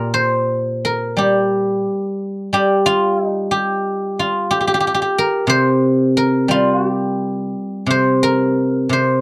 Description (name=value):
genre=chinese traditional, Chinese solo plucked strings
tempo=84-93 BPM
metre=4/4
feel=rubato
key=unclear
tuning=A4 = 440 Hz
part: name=guzheng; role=solo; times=0.0-9.2 s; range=Bb2 to C5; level=-18 LUFS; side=equal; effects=none
room=light reverb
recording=dry, close 1970s-style studio recording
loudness=-18 LUFS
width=mono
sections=0.0-9.2 A section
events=none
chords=none